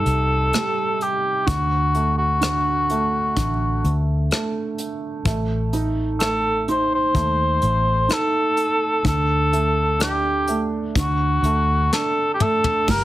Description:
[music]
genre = acoustic folk-pop ballad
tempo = 63 BPM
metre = 4/4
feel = straight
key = unclear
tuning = A4 = 440 Hz
[part]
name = mellow cor anglais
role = melody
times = 0.0-13.0 s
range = F#4 to C5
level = -20 LUFS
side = left 1 dB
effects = none
[part]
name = felt-muted upright piano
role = accompaniment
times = 0.0-13.0 s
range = C3 to Eb4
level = -26 LUFS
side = right 4 dB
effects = none
[part]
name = vintage muted fingered electric bass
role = bass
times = 0.0-13.0 s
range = G1 to Eb2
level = -23 LUFS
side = equal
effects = none
[part]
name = soft brush drum kit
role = drums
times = 0.1-13.0 s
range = crash cymbal, hi-hat, kick drum, rim click, snare drum, toms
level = -25 LUFS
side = left 2 dB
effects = none
[sound]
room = light reverb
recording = heavily compressed radio sound, multiband compression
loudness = -18 LUFS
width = side -15 dB against mid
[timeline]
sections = 0.0-12.9 A section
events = drum fill 11.9-12.9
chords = 0.0 Cm; 1.5 D; 5.3 Adim; 9.0 D5

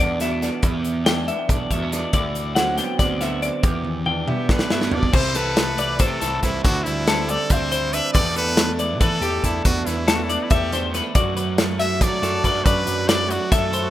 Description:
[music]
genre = math rock and midwest emo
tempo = 280 BPM (eighths)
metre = 7/8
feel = straight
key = E minor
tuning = A4 = 442 Hz
[part]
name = electric guitar through a small old amp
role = accompaniment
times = 0.0-13.9 s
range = E2 to G4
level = -26 LUFS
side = right 5 dB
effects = warbly pitch drift
[part]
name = twelve-string electric guitar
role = arpeggios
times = 0.0-13.9 s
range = G4 to G5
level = -25 LUFS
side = left 4 dB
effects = tape echo
[part]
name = fuzz picked electric bass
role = bass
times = 0.0-13.9 s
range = B1 to F#3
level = -28 LUFS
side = equal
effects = overdrive
[part]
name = modern studio drum kit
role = drums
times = 0.2-13.8 s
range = crash cymbal, hi-hat, kick drum, snare drum, toms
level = -22 LUFS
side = equal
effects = none
[part]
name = brilliant trumpet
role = melody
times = 4.3-13.9 s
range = D4 to E5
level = -25 LUFS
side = equal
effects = none
[sound]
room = light reverb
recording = rough home demo mix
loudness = -18 LUFS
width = side -13 dB against mid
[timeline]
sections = 0.0-5.1 A section; 5.1-13.9 B section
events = drum fill 3.9-5.1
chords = 0.0 Em7; 2.1 D13; 3.6 Em7; 5.1 C6; 6.6 D9sus4; 8.1 Em7; 11.2 Bm7/F#

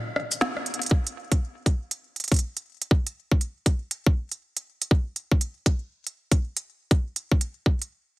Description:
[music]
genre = IDM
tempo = 120 BPM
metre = 4/4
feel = swing 62% on 16ths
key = none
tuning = none
[part]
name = organic electronic drum kit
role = drums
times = 0.2-7.9 s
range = hi-hat, rim click, shaker, snare drum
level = -27 LUFS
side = right 1 dB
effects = ping-pong delay
[part]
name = electronic kick drum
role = drums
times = 0.9-7.8 s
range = none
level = -21 LUFS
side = equal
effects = none
[sound]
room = digital ambience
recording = heavily compressed radio sound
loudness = -24 LUFS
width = side -20 dB against mid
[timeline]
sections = 0.9-8.2 A section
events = break 0.0-0.9; drum fill 0.7; stop 7.9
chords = none

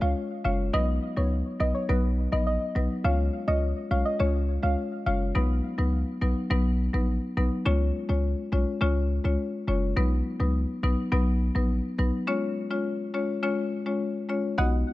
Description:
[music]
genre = dancehall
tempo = 104 BPM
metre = 4/4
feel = straight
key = B lydian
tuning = A4 = 440 Hz
[part]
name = soft round pluck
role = melody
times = 0.0-5.2, 14.6-14.7 s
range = B4 to F#5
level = -31 LUFS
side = right 1 dB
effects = chorus, tape echo
[part]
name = marimba with medium mallets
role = accompaniment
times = 0.0-14.9 s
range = F#3 to D#5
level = -28 LUFS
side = left 2 dB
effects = none
[part]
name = hard-hitting 808-style bass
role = bass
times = 0.0-14.8 s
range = F#1 to C#2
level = -25 LUFS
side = equal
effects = none
[sound]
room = studio reverb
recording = none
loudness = -24 LUFS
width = side -17 dB against mid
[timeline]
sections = 0.0-5.4 A section; 5.4-14.6 B section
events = break 12.3-14.6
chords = 0.0 C#; 0.7 B; 3.0 C#; 5.4 B; 7.7 C#; 10.0 B; 12.3 C#

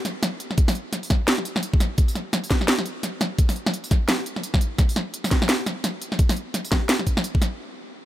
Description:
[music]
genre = drum and bass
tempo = 171 BPM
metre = 4/4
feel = swing 60% on 16ths, half-time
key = none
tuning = none
[part]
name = drum and bass drum kit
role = drums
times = 0.1-7.5 s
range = hi-hat, snare drum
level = -24 LUFS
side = equal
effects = none
[part]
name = electronic kick drum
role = drums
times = 0.6-7.4 s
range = none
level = -20 LUFS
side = equal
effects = none
[sound]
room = little or no reverb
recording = none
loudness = -20 LUFS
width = side -14 dB against mid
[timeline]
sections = 0.0-7.6 A section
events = drop 0.0-7.6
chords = none

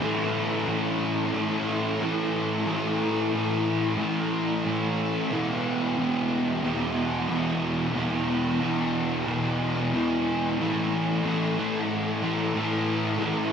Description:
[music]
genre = rock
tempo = 91 BPM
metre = 4/4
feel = straight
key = unclear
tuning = A4 = 440 Hz
[part]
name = fuzz guitar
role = solo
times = 0.0-13.5 s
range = E2 to A3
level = -24 LUFS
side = equal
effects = distortion, lush chorus, tape echo
[sound]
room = wet huge ambient reverb, RT60 7.2 s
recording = dreamy mix soaked in reverb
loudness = -24 LUFS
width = side -7 dB against mid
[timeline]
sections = 0.0-10.6 A section; 10.6-13.5 B section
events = none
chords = 0.0 A5; 5.3 E5; 10.6 A5

